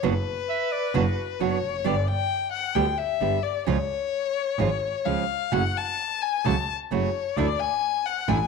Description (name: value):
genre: tango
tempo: 131 BPM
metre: 4/4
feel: rubato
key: F# minor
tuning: A4 = 440 Hz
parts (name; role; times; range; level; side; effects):
- warm violin; second line; 0.0-8.5 s; B4 to A5; -26 LUFS; left 10 dB; none
- nylon-string guitar; accompaniment; 0.0-8.4 s; B2 to G4; -27 LUFS; right 13 dB; none
- clear double bass; bass; 0.0-8.5 s; E#1 to D2; -28 LUFS; right 1 dB; none
- clear clarinet; second line; 0.5-1.3 s; F#4 to E5; -29 LUFS; right 10 dB; none
room: moderate spring reverb, RT60 1.3 s, small room ambience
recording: 1960s-style stereo with parts hard left and right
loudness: -23 LUFS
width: side -5 dB against mid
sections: 0.0-8.5 A section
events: violin solo 0.0-8.5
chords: 0.0 Bm/F#; 1.9 G; 3.7 C#; 5.5 F#m; 7.4 Dsus2